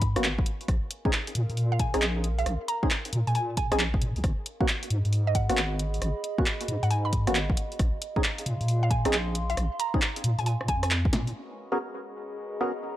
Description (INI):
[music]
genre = UK garage, two-step garage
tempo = 135 BPM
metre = 4/4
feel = swing 66% on 16ths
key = unclear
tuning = A4 = 439 Hz
[part]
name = mallet-like synth pluck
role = melody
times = 0.0-10.9 s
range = D#5 to B5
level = -33 LUFS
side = right 1 dB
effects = wide subtle chorus, tape echo
[part]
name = deep soft wobble bass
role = bass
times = 0.0-11.3 s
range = G#1 to A#2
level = -27 LUFS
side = equal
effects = chorus
[part]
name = electronic kick drum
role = drums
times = 0.0-11.1 s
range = none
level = -28 LUFS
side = equal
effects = none
[part]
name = punchy analog drum machine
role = drums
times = 0.0-11.3 s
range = handclaps, hi-hat, rim click, snare drum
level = -30 LUFS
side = equal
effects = none
[part]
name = warbly tape-like pad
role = texture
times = 0.0-13.0 s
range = G#4 to B#5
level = -40 LUFS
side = right 1 dB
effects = chorus, built-in reverb, sidechain pumping
[part]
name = percussive organ stab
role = stabs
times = 0.2-12.7 s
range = A#3 to A#4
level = -31 LUFS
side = equal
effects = analog chorus, tape echo
[part]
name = clear studio violin section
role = sustained chords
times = 11.3-13.0 s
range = G#3 to D#5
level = -43 LUFS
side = equal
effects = sidechain pumping, low-pass filter
[sound]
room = digital ambience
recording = dry, gritty hardware recording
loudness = -24 LUFS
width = side -13 dB against mid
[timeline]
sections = 0.0-11.3 A section; 11.3-13.0 B section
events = fade-in on ambient pad 0.0-11.3; drum fill 11.1; band accent 11.1; filter sweep on violin section 11.3-13.0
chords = 0.5 A#m11; 4.2 G#m11; 7.6 A#m11; 11.3 G#m11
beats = 0.24 | 0.68 1.13 1.57 2.02 | 2.46 2.91 3.35 3.79 | 4.24 4.68 5.13 5.57 | 6.02 6.46 6.91 7.35 | 7.79 8.24 8.68 9.13 | 9.57 10.02 10.46 10.91 | 11.35 11.79 12.24 12.68